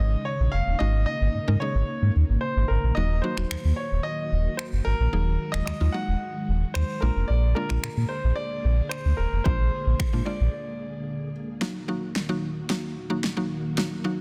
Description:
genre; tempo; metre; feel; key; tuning
dance-pop; 111 BPM; 4/4; straight; Eb dorian; A4 = 437 Hz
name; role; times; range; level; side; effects
warm concert grand piano; melody; 0.0-11.3 s; Bb4 to Gb5; -34 LUFS; equal; digital delay
string machine, cellos; sustained chords; 0.0-14.2 s; Db3 to Ab4; -36 LUFS; equal; ensemble chorus, sidechain pumping
sub bass with octave; bass; 0.0-10.5 s; Eb1 to Bb2; -24 LUFS; equal; sidechain pumping
mallet-like synth pluck; accompaniment; 0.8-14.2 s; Gb3 to Bb4; -34 LUFS; equal; chorus, sidechain pumping
deep house drum kit; drums; 3.4-13.9 s; finger snaps, kick drum, snare drum; -32 LUFS; equal; overdrive, soft clipping on snare
room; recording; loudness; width
digital ambience; dense, heavily limited modern master; -26 LUFS; mono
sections
0.0-11.6 A section; 11.6-14.2 B section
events
break 10.5-11.6; build-up 11.6-14.2; drum fill 11.6-14.2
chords
0.0 Absus4; 3.0 Ebm; 7.0 Bb7; 11.6 Ebm

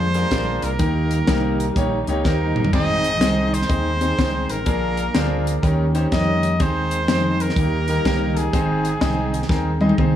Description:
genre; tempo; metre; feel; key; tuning
uptempo gospel; 124 BPM; 4/4; swing 65% on 8ths; Ab major; A4 = 443 Hz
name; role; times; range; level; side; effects
bright trumpet; melody; 0.0-10.0 s; Ab4 to Eb5; -25 LUFS; right 1 dB; none
bright concert grand piano; accompaniment; 0.0-10.2 s; Ab2 to Eb5; -24 LUFS; left 2 dB; none
warm studio string section; sustained chords; 0.0-10.2 s; Eb3 to Eb4; -29 LUFS; right 2 dB; none
fingered electric bass; bass; 0.0-10.2 s; G1 to F2; -23 LUFS; equal; none
crisp fusion drum kit; drums; 0.1-10.1 s; crash cymbal, hi-hat, kick drum, snare drum, toms; -23 LUFS; equal; none
room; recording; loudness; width
light reverb, studio reverb; none; -17 LUFS; side -11 dB against mid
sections
0.0-10.2 A section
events
drum fill 2.2-2.7, 9.5-10.2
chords
0.0 Bb7; 0.8 Eb; 2.7 Ab; 4.7 Bb7; 5.6 Eb7; 6.6 Ab/Eb; 7.6 Eb; 8.5 Ab

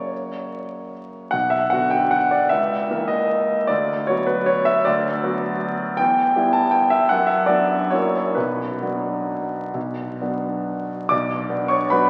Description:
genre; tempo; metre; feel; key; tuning
classical, piano waltz; 128-166 BPM; 3/4; rubato; B minor; A4 = 441 Hz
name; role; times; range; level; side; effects
warm concert grand piano; solo; 0.0-12.1 s; B1 to D6; -21 LUFS; equal; none
room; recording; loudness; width
wet church reverb, RT60 3.0 s; very old 78 rpm record, vinyl crackle; -21 LUFS; mono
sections
0.0-11.1 A section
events
none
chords
0.0 F#; 1.3 Bm; 2.5 A#dim/C#; 3.7 Bm/D; 6.0 Em; 7.1 Bm/F#; 7.9 F#7; 8.4 Bm

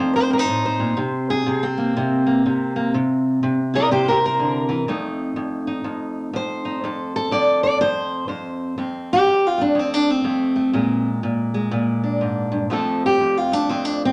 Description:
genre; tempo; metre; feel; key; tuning
acoustic country blues, solo or duo; 123 BPM; 4/4; swing 62% on 8ths; F mixolydian; A4 = 440 Hz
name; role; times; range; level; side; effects
fingerpicked steel-string acoustic guitar; solo; 0.0-14.1 s; F2 to Eb5; -21 LUFS; equal; none
room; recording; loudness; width
wet club reverb, RT60 0.5 s; none; -21 LUFS; mono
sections
0.0-8.8 A section; 8.8-14.1 B section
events
steel-string acoustic guitar solo 8.8-14.1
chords
0.0 F7; 1.0 C7; 4.9 F7; 8.8 F; 10.8 Bb7; 12.7 F

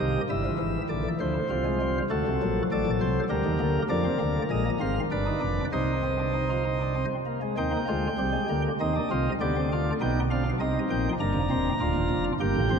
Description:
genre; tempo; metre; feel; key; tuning
classical, baroque-style 4-part fugue for pipe organ; 99 BPM; 3/4; straight; C minor from 3.9 s; A4 = 441 Hz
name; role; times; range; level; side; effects
chamber organ, sparkling flutes; solo; 0.0-12.8 s; D1 to Bb5; -24 LUFS; equal; none
room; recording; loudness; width
wet cathedral reverb, RT60 7.3 s; dark, warm production; -24 LUFS; side -6 dB against mid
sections
0.3-7.6 A section; 7.6-12.8 B section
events
none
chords
0.3 C7/G; 1.5 Fm/C; 2.1 D7; 3.3 Gm/D; 3.9 Ddim; 5.1 G7; 5.7 Cm; 8.8 Cm/Eb; 9.4 G7/D; 10.6 Cm; 11.2 Gm

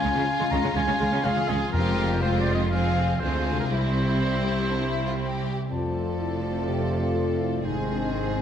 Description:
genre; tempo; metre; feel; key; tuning
cinematic; 122 BPM; 4/4; straight; unclear; A4 = 442 Hz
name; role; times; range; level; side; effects
clear studio violin section; melody; 0.0-8.4 s; E4 to A4; -32 LUFS; left 3 dB; none
warm oboe; second line; 0.0-8.4 s; Ab4 to Bb5; -31 LUFS; equal; none
warm symphonic violin section; second line; 0.0-8.4 s; C4 to Ab4; -34 LUFS; left 2 dB; none
clear symphonic viola section; accompaniment; 0.0-8.4 s; Eb3 to Db4; -32 LUFS; equal; none
concert harp; arpeggios; 0.0-8.4 s; F2 to F5; -33 LUFS; left 5 dB; none
bright symphonic cello section; bass; 0.0-8.4 s; C2 to Db3; -30 LUFS; equal; none
rich symphonic double bass section; bass; 0.0-8.4 s; F1 to D2; -30 LUFS; right 2 dB; none
timpani; percussion; 1.7-2.4 s; F2; -31 LUFS; left 1 dB; none
mellow clarinet; second line; 5.7-8.4 s; C4 to G4; -34 LUFS; left 2 dB; none
mellow hollow silver concert flute; second line; 5.7-8.4 s; F5 to A5; -38 LUFS; equal; none
mellow French horn section; sustained chords; 5.7-8.4 s; C4 to F4; -33 LUFS; left 3 dB; none
mellow trombone section; sustained chords; 5.7-8.4 s; C3 to A3; -33 LUFS; right 3 dB; none
room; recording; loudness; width
wet scoring stage reverb, RT60 1.8 s; none; -22 LUFS; side -9 dB against mid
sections
0.0-5.7 A section; 5.7-8.4 B section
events
none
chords
0.0 Db; 1.7 Fm; 3.7 C; 5.7 F; 7.7 Ab

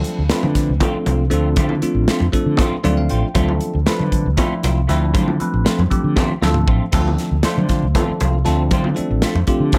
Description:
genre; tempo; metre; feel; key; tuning
electric jazz fusion; 235 BPM (eighths); 7/8; straight; D dorian; A4 = 439 Hz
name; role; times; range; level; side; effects
bell-like tine electric piano; accompaniment; 0.0-9.8 s; F3 to G5; -24 LUFS; equal; phaser
modern studio drum kit; drums; 0.0-9.8 s; hi-hat, kick drum, snare drum, splash cymbal, toms; -22 LUFS; equal; none
fretless electric bass; bass; 0.2-9.7 s; A1 to D3; -21 LUFS; equal; none
congas; percussion; 0.2-9.8 s; none; -26 LUFS; equal; none
semi-hollow electric guitar; stabs; 0.3-9.8 s; A3 to F4; -29 LUFS; equal; ensemble chorus
room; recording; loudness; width
light reverb; none; -18 LUFS; mono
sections
0.0-9.8 A section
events
tine electric piano fill 2.6-3.4; drum fill 6.2-6.9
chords
0.0 Dm7

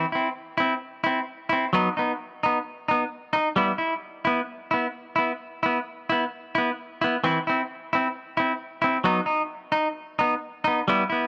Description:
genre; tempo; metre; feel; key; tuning
highlife; 131 BPM; 4/4; swing 55% on 16ths; E harmonic minor; A4 = 435 Hz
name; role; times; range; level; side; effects
semi-hollow electric guitar; solo; 0.0-11.3 s; E3 to E4; -26 LUFS; equal; warbly pitch drift
room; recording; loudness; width
light reverb, digital ambience; none; -26 LUFS; mono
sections
0.0-10.9 A section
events
none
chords
0.0 C; 1.7 B; 3.6 E5; 7.2 C/E; 9.1 B

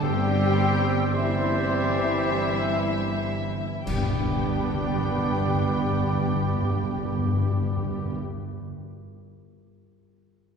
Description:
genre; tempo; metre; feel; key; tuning
classical, slow romantic movement for symphony orchestra; 40-57 BPM; 3/4; rubato; G major; A4 = 440 Hz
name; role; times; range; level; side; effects
muted studio violin section; melody; 0.0-8.2 s; E5 to G5; -34 LUFS; left 4 dB; none
clear clarinet; second line; 0.0-8.2 s; D4 to G4; -36 LUFS; left 3 dB; none
mellow hollow flute section; second line; 0.0-8.2 s; B5 to E6; -37 LUFS; right 1 dB; none
muted studio violin section; second line; 0.0-8.2 s; E4 to G4; -37 LUFS; left 3 dB; none
warm oboe; second line; 0.0-8.2 s; C5 to D5; -36 LUFS; right 3 dB; none
mellow bassoon; accompaniment; 0.0-8.2 s; G3; -37 LUFS; right 1 dB; none
muted studio viola section; accompaniment; 0.0-8.2 s; B3 to G4; -34 LUFS; right 2 dB; none
clear trombone section; sustained chords; 0.0-8.2 s; G3 to C4; -34 LUFS; right 3 dB; none
mellow French horn section; sustained chords; 0.0-8.2 s; E3 to G3; -32 LUFS; left 2 dB; none
concert harp; arpeggios; 0.0-8.5 s; G2 to G5; -34 LUFS; left 3 dB; none
muted studio cello section; bass; 0.0-8.2 s; G2; -32 LUFS; right 2 dB; none
muted studio double bass section; bass; 0.0-8.2 s; G1; -32 LUFS; right 6 dB; none
timpani; percussion; 0.0-8.2 s; G2; -28 LUFS; left 1 dB; none
clash cymbals and concert bass drum; percussion; 3.9-6.6 s; none; -34 LUFS; left 1 dB; none
room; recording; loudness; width
wet concert hall reverb, RT60 2.2 s; heard from further back in the room; -22 LUFS; side -6 dB against mid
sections
0.0-3.9 A section; 3.9-8.0 B section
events
slowing down 0.0-3.9; band accent 3.9-5.2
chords
0.0 C/G; 3.9 G

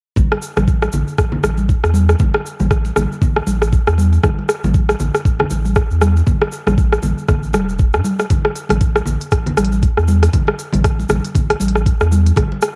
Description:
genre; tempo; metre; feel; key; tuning
afro house; 118 BPM; 4/4; swing 58% on 16ths; unclear; A4 = 440 Hz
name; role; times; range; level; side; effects
warm sub bass; bass; 0.2-12.5 s; E1 to A2; -19 LUFS; equal; sidechain pumping
electronic kick drum; drums; 0.2-12.5 s; none; -18 LUFS; equal; cassette tape
congas; percussion; 0.2-12.6 s; none; -23 LUFS; equal; none
tube shaker; percussion; 0.2-12.7 s; none; -38 LUFS; equal; none
afro-pop drum kit; drums; 0.3-12.7 s; hi-hat, rim click; -22 LUFS; equal; cassette tape
room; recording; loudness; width
light reverb, studio ambience; home recording on cassette; -16 LUFS; mono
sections
0.2-12.8 A section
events
none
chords
none

